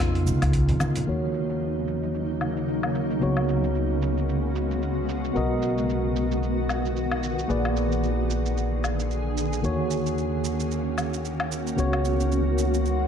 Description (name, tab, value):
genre	sunset chillout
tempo	112 BPM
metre	4/4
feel	swing 57% on 16ths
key	Eb minor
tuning	A4 = 440 Hz
part	tine electric piano	accompaniment	0.0-13.1 s	Db3 to D#5	-28 LUFS	equal	auto-pan, low-pass filter, tape echo
part	shimmering ambient pad	sustained chords	0.1-13.1 s	Db3 to Ab4	-28 LUFS	equal	chorus, built-in reverb
part	upright bass	bass	0.0-13.1 s	Bb1 to F2	-27 LUFS	equal	tube saturation
part	dusty soul sampler-style drum kit	drums	0.0-13.0 s	hi-hat, rim click, shaker, woodblock	-33 LUFS	left 2 dB	overdrive, low-pass filter on perc, low-pass filter on hats, low-pass filter on snare
part	electronic kick drum	drums	0.0-0.7 s	none	-28 LUFS	equal	none
part	congas	percussion	0.7-1.1 s	none	-32 LUFS	right 1 dB	none
room	moderate plate reverb, RT60 1.5 s, digital ambience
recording	dark, warm production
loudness	-23 LUFS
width	side -8 dB against mid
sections	0.0-1.1 A section; 1.1-13.1 B section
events	filter sweep on tine electric piano 0.0-1.1, 1.1-13.1; filter sweep on drum 1.1-13.1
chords	0.0 Db9; 1.1 Ebm7; 3.2 Db7sus4; 5.4 Bmaj7; 7.5 Bb7b9; 9.6 Ebm7; 11.8 Db7sus4